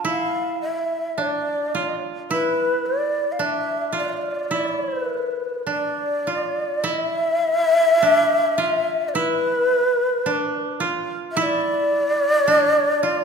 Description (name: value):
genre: japanese traditional, Japanese chamber music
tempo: 54 BPM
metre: 2/4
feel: rubato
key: D kumoi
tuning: A4 = 439 Hz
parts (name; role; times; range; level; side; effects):
- breathy mellow shakuhachi; melody; 0.0-13.2 s; B4 to F5; -20 LUFS; left 1 dB; none
- koto; second line; 0.0-13.2 s; D4 to F4; -25 LUFS; right 3 dB; none
room: wet scoring stage reverb, RT60 2.0 s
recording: recorded in a church or concert hall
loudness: -19 LUFS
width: side -6 dB against mid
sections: 0.0-6.9 A section; 6.9-13.2 B section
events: none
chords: none